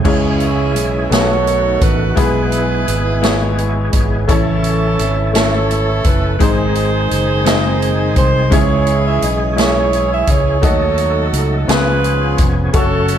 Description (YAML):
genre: slow gospel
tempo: 57 BPM (dotted quarters)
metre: 6/8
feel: straight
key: C# minor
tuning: A4 = 440 Hz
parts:
  - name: clear grand piano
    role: accompaniment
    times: 0.0-13.2 s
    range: G#2 to E5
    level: -20 LUFS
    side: left 4 dB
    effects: none
  - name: overdriven tonewheel organ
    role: sustained chords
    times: 0.0-13.2 s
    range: D#3 to A4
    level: -22 LUFS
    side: equal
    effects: slow rotary speaker, chorus vibrato
  - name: fingered electric bass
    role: bass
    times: 0.0-13.2 s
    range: E#1 to D#2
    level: -18 LUFS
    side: equal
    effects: none
  - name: warm saxophone section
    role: melody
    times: 0.1-13.2 s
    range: C#4 to E5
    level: -18 LUFS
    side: right 3 dB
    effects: none
  - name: swinging big-band drum kit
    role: drums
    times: 0.1-13.2 s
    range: crash cymbal, hi-hat, kick drum, snare drum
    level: -17 LUFS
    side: equal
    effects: none
room: light reverb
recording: none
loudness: -12 LUFS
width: side -9 dB against mid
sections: 0.1-13.2 A section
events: none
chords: 0.1 C#m; 1.1 B7; 2.2 E; 4.3 A; 6.4 G#; 8.5 C#m; 10.6 D#dim; 11.7 C#7